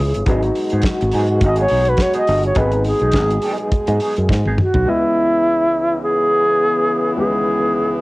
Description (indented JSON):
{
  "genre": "disco",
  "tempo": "104 BPM",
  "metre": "4/4",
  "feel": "swing 56% on 16ths",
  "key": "C# minor",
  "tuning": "A4 = 442 Hz",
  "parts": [
    { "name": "reedy wooden-headed alto flute", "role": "melody", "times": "0.0-8.0 s", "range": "E4 to D#5", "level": "-16 LUFS", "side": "equal", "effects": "cassette tape" },
    { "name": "mellow electric guitar", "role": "accompaniment", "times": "0.0-4.8 s", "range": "F#3 to G#4", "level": "-26 LUFS", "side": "right 2 dB", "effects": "wah, tremolo, cassette tape" },
    { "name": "warm baby grand piano", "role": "accompaniment", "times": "0.0-8.0 s", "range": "C#2 to D#5", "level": "-28 LUFS", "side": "left 3 dB", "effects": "cassette tape" },
    { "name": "mellow French horn section", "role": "sustained chords", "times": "0.0-8.0 s", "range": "B2 to G#4", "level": "-22 LUFS", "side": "equal", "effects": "cassette tape" },
    { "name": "fingered electric bass", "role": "bass", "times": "0.0-4.8 s", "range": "G1 to G#2", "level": "-18 LUFS", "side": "equal", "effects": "none" },
    { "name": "damped 70s drum kit", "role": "drums", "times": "0.1-4.9 s", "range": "hi-hat, kick drum, snare drum, toms", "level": "-20 LUFS", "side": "equal", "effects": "cassette tape" }
  ],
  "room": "little or no reverb",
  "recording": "home recording on cassette",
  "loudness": "-14 LUFS",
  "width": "side -21 dB against mid",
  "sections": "0.0-4.9 A section; 4.9-8.0 B section",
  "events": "alto flute solo 0.0-4.9; drum fill 4.3-4.9",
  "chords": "0.3 G#m7; 4.9 C#m7"
}